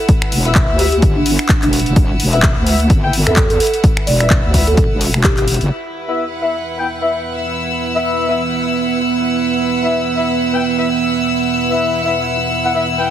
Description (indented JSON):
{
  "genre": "bass house",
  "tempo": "128 BPM",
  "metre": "4/4",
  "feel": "swing 57% on 16ths",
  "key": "unclear",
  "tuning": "A4 = 440 Hz",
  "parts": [
    { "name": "rich chamber string section", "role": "texture", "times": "0.0-13.1 s", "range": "E4 to E6", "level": "-21 LUFS", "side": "left 2 dB", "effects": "sidechain pumping" },
    { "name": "electronic kick drum", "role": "drums", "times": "0.1-5.3 s", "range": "none", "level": "-14 LUFS", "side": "equal", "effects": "none" },
    { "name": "house drum kit", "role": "drums", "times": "0.1-13.1 s", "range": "crash cymbal, finger snaps, handclaps, hi-hat, shaker", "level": "-20 LUFS", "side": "left 1 dB", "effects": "low-pass filter on hats, low-pass filter on snare, low-pass filter on cymbals, low-pass filter on perc" },
    { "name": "wobble bass", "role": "bass", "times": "0.3-5.7 s", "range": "E1 to E2", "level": "-16 LUFS", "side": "equal", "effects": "chorus, sidechain pumping" },
    { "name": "warm horn section", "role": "stabs", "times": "0.5-13.1 s", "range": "B3 to G5", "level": "-20 LUFS", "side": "left 3 dB", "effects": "sidechain pumping, low-pass filter, digital delay" },
    { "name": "buzzing marimba with soft mallets", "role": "melody", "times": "0.8-5.4 s", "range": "D4 to D5", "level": "-20 LUFS", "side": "right 2 dB", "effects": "digital delay" },
    { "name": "deep dark ambient pad", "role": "sustained chords", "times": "6.8-13.1 s", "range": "E3 to B4", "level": "-19 LUFS", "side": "right 6 dB", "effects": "chorus, built-in reverb, sidechain pumping" }
  ],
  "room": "moderate lush hall reverb, RT60 1.9 s, digital ambience",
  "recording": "heavily compressed radio sound, multiband compression",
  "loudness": "-13 LUFS",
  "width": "side -10 dB against mid",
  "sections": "0.0-5.7 A section; 5.7-13.1 B section",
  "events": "none",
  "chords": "0.0 E5"
}